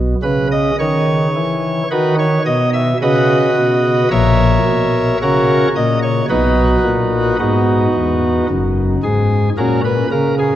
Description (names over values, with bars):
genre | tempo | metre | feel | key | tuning
classical, chorale-style piece for pipe organ | 55 BPM | 4/4 | rubato | B major | A4 = 440 Hz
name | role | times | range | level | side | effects
pipe organ, cornet | solo | 0.0-10.6 s | F#1 to E5 | -12 LUFS | equal | none
room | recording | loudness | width
wet church reverb, RT60 3.7 s | worn, warbling old tape, cassette tape, warbly pitch drift | -12 LUFS | side -12 dB against mid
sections
0.0-10.6 A section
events
none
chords
0.0 B; 4.1 F#7/A#; 6.3 B; 8.5 F#